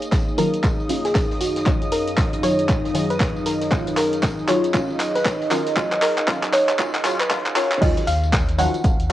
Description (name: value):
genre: deep house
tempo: 117 BPM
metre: 4/4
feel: swing 61% on 16ths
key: Eb minor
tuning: A4 = 437 Hz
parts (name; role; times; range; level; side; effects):
- soft round pluck; melody; 0.0-9.1 s; Gb4 to Gb5; -24 LUFS; equal; wide subtle chorus, cassette tape, analog delay
- deep dark ambient pad; sustained chords; 1.1-7.8 s; Gb3 to F5; -28 LUFS; right 1 dB; chorus, built-in reverb, sidechain pumping, cassette tape
- filtered dub chord stab; stabs; 0.0-9.1 s; Eb3 to F4; -25 LUFS; left 1 dB; phaser, analog chorus, sidechain pumping, cassette tape, tape echo
- deep house drum kit; drums; 0.0-9.1 s; crash cymbal, handclaps, hi-hat, tambourine; -26 LUFS; equal; cassette tape
- airy breathy pad; texture; 0.0-7.8 s; Bb3 to F5; -28 LUFS; equal; chorus, sidechain pumping, cassette tape
- string machine, violins; texture; 0.0-7.8 s; Eb5 to Eb6; -36 LUFS; equal; ensemble chorus, sidechain pumping, cassette tape
- compact cocktail drum kit; drums; 0.1-9.1 s; hi-hat, snare drum, tambourine; -35 LUFS; equal; sidechain pumping on hats, high-pass filter on hats, cassette tape, high-pass filter on snare, sidechain pumping on perc, high-pass filter on perc, high-pass filter on room
- electronic kick drum; drums; 0.1-9.0 s; none; -21 LUFS; equal; cassette tape
- sub bass with octave; bass; 7.8-9.1 s; Eb1 to Eb2; -23 LUFS; equal; sidechain pumping
room: moderate spring reverb, RT60 2.0 s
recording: home recording on cassette, high-pass filter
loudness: -18 LUFS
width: side -13 dB against mid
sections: 0.0-7.8 A section; 7.8-9.1 B section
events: build-up 0.0-7.8; drum fill 0.0-7.8; filter sweep on synth stab 0.0-7.8; filter sweep on ambient pad 0.0-7.8; filter sweep 0.0-7.8; drop 7.8-9.1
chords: 0.0 Ebm9